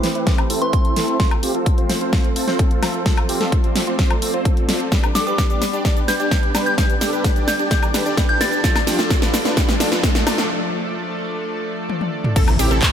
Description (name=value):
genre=EDM, festival progressive house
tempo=129 BPM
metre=4/4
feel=straight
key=unclear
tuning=A4 = 443 Hz
part: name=lush unison pad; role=sustained chords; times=0.0-12.9 s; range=C3 to D5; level=-27 LUFS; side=equal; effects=chorus, sidechain pumping
part: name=supersaw chords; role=riff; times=0.0-12.9 s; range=C4 to D5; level=-23 LUFS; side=right 1 dB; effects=sidechain pumping, low-pass filter, ping-pong delay
part: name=big-room dance drum kit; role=drums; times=0.0-12.9 s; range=cabasa, crash cymbal, handclaps, hi-hat, snare drum, toms, woodblock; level=-22 LUFS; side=equal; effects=studio ambience
part: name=electronic kick drum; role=drums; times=0.3-12.9 s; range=none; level=-18 LUFS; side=equal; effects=studio ambience
part: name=soft synth bell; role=melody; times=0.6-1.2, 5.2-8.7 s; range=C6 to A6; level=-24 LUFS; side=equal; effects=chorus, ping-pong delay
part: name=riser and impact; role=sound effects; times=6.7-12.9 s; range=none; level=-28 LUFS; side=equal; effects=none
part: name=wide unison pluck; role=arpeggios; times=12.4-12.9 s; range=G4 to A4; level=-24 LUFS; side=equal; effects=sidechain pumping
part: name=wide detuned saw bass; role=bass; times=12.4-12.9 s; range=A1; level=-21 LUFS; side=equal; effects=chorus, sidechain pumping
room=light reverb, digital ambience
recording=none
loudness=-16 LUFS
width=side -9 dB against mid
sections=0.0-12.4 A section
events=build-up 0.0-12.4; drum fill 0.0-10.5, 11.9-12.4; filter sweep on supersaw synth 0.0-12.4; filter sweep on analog synth pad 0.0-12.4; riser 6.7-10.5; break 10.5-12.4; impact 12.4-12.9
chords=0.0 Am; 1.2 F; 4.9 G; 8.6 Dm; 12.4 Am